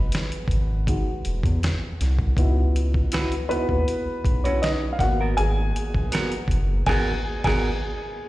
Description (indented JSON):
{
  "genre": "R&B, neo-soul",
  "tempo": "80 BPM",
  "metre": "4/4",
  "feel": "swing 53% on 16ths",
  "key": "G# minor",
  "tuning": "A4 = 441 Hz",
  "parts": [
    { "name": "dark upright piano", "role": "accompaniment", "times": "0.0-8.3 s", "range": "G#3 to G#5", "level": "-27 LUFS", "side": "equal", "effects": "plate reverb, slapback echo" },
    { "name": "round analog bass", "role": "bass", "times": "0.0-7.7 s", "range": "E1 to E2", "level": "-22 LUFS", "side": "equal", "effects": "none" },
    { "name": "dusty soul sampler-style drum kit", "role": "drums", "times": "0.1-7.7 s", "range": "crash cymbal, hi-hat, kick drum, snare drum", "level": "-26 LUFS", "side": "equal", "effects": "none" },
    { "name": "semi-hollow electric guitar", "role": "second line", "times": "3.1-7.7 s", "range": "B3 to B4", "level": "-28 LUFS", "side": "right 3 dB", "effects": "plate reverb, slapback echo" }
  ],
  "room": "light reverb",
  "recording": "live gig heard through the venue's PA, recital hall reverb",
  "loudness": "-21 LUFS",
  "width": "side -17 dB against mid",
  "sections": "0.0-8.3 A section",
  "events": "upright piano solo 0.0-8.3; band accent 6.9-8.3",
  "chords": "0.0 Emaj9; 2.4 C#m11; 5.0 G#m9"
}